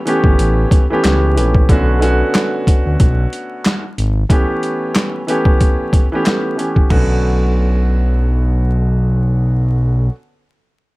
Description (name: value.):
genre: hip hop, boom-bap hip-hop.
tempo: 92 BPM.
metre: 4/4.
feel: swing 56% on 16ths.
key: B minor.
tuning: A4 = 440 Hz.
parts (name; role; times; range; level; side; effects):
warm grand piano; accompaniment; 0.1-10.1 s; D3 to G4; -18 LUFS; equal; high-pass filter, low-pass filter, plate reverb.
boom bap sampler-style drum kit; drums; 0.1-7.1 s; crash cymbal, handclaps, hi-hat, kick drum, snare drum, toms; -14 LUFS; equal; overdrive.
smooth synth bass; bass; 0.2-10.1 s; G1 to D2; -14 LUFS; equal; none.
room: little or no reverb.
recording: dark, warm production, vinyl crackle.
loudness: -12 LUFS.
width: side -21 dB against mid.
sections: 0.0-1.7 A section; 1.7-6.9 B section; 6.9-9.5 C section.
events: none.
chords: 0.0 A7; 1.7 Bm7; 4.3 A7; 6.9 Bm7.